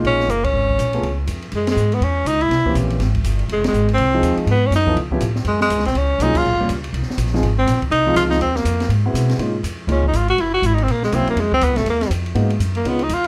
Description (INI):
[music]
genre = jazz, small-group swing and bop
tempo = 244 BPM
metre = 4/4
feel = swing 60% on 8ths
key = Db major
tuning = A4 = 440 Hz
[part]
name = warm grand piano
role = accompaniment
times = 0.0-13.0 s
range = E3 to A4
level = -25 LUFS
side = equal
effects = none
[part]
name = upright bass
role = bass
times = 0.0-13.3 s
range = F1 to Db3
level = -22 LUFS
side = equal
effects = none
[part]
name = open jazz drum kit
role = drums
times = 0.0-13.3 s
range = crash cymbal, hi-hat, kick drum, ride cymbal, snare drum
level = -30 LUFS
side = equal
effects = none
[part]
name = warm tenor saxophone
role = melody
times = 0.1-13.3 s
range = Ab3 to Gb4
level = -21 LUFS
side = equal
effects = none
[sound]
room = light reverb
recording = dark, warm production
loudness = -18 LUFS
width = mono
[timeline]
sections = 0.0-1.5 A section; 1.5-9.4 B section; 9.4-13.3 C section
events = band accent 0.4, 1.6, 3.6, 6.3; tenor saxophone solo 9.4-13.3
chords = 0.0 Db6; 1.0 Db; 1.5 Gbsus2; 2.5 C7b9; 3.5 Fm7; 4.5 Abm7; 5.0 Db7alt; 5.5 Gbmaj9; 6.4 Gm7b5; 6.9 Bb9sus4; 7.4 Fm7; 8.4 Ebsus2; 8.9 Ab7alt; 9.4 Db6; 10.4 Gb7#11; 11.4 F7(no3); 12.4 Abm7